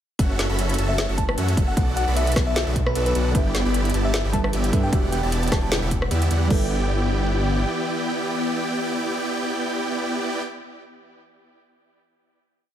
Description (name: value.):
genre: future bass.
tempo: 152 BPM.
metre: 4/4.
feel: swing 54% on 16ths, half-time.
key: G major.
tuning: A4 = 440 Hz.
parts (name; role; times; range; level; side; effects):
airy breathy pad; sustained chords; 0.7-10.4 s; D3 to F#5; -33 LUFS; left 2 dB; chorus, sidechain pumping.
supersaw chords; riff; 0.2-10.4 s; B3 to B5; -26 LUFS; right 1 dB; sidechain pumping, tape echo.
wide detuned saw bass; bass; 0.2-7.7 s; E1 to G2; -23 LUFS; equal; chorus, tube saturation, sidechain pumping.
electronic kick drum; drums; 0.2-6.6 s; none; -22 LUFS; equal; overdrive, small room ambience.
trap drum kit; drums; 0.2-6.6 s; crash cymbal, hi-hat, rim click, snare drum; -28 LUFS; equal; small room ambience.
bell-like FM electric piano; melody; 0.9-5.7 s; B4 to A5; -29 LUFS; left 1 dB; chorus, sidechain pumping, dub echo.
soft round pluck; accompaniment; 3.3-11.1 s; E3 to E5; -30 LUFS; right 4 dB; chorus, cassette tape, sidechain pumping, tape echo.
room: light reverb.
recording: none.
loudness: -20 LUFS.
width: side -10 dB against mid.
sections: 0.2-6.5 drop; 6.5-9.7 final chord.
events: drop 0.2-6.5.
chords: 0.2 F#m7; 1.8 Bm7; 3.3 G6; 4.9 Em9; 6.5 G6.